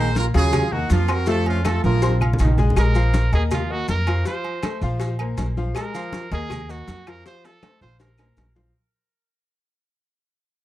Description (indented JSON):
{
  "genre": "latin, salsa",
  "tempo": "161 BPM",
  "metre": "4/4",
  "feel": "straight",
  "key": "unclear",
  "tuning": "A4 = 440 Hz",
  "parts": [
    { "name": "brilliant horn section", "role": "melody", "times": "0.0-2.2 s", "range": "Bb3 to C5", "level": "-26 LUFS", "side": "right 3 dB", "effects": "tape echo" },
    { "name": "brilliant trombone section", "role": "second line", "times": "0.0-2.6 s", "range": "Db3 to A3", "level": "-26 LUFS", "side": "right 4 dB", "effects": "none" },
    { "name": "bright concert grand piano", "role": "accompaniment", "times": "0.0-8.7 s", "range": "F3 to F6", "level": "-28 LUFS", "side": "left 4 dB", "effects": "none" },
    { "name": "upright bass", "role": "bass", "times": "0.0-8.7 s", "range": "Bb1 to F2", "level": "-21 LUFS", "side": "equal", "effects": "none" },
    { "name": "congas", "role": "percussion", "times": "0.2-8.8 s", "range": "none", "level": "-28 LUFS", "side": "left 1 dB", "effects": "none" },
    { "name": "cowbell and bongos", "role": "percussion", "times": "0.2-8.6 s", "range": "none", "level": "-32 LUFS", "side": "left 7 dB", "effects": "none" },
    { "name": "maracas", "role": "percussion", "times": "0.2-8.7 s", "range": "none", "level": "-43 LUFS", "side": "left 2 dB", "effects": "none" },
    { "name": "agogo bells and timbales", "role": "percussion", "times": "0.3-8.6 s", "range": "none", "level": "-34 LUFS", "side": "right 8 dB", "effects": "none" },
    { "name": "claves", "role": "percussion", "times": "0.5-8.4 s", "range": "none", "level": "-38 LUFS", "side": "left 9 dB", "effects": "none" },
    { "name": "brilliant trumpet", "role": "melody", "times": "2.8-8.5 s", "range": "F4 to C5", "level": "-30 LUFS", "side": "right 3 dB", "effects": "tape echo" }
  ],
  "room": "light reverb",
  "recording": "dark, warm production",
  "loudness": "-18 LUFS",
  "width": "side -15 dB against mid",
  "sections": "0.0-2.8 A section; 2.8-8.7 B section",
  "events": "drum fill 1.8-2.8, 7.3-8.7; fade-out 2.8-8.7",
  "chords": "0.0 Bbm7; 0.5 Ebmadd9; 1.3 F; 2.0 Bbsus2; 2.8 Bb5; 3.5 Ebsus2; 4.3 F; 5.0 Bbsus2; 5.8 Bb5; 6.5 Ebmadd9; 7.3 F; 8.0 Bbsus2"
}